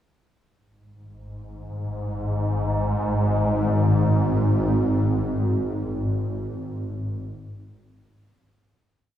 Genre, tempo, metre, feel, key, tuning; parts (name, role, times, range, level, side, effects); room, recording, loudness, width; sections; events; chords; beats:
ambient; free time; A4 = 440 Hz
swarming drone; solo; 1.7-8.9 s; G#1 to G#2; -22 LUFS; equal; built-in reverb
wet cathedral reverb, RT60 6.5 s; in a vast, echoing space, small room ambience; -21 LUFS; side -11 dB against mid
0.6-8.8 A section
fade-out 4.7-8.8
free time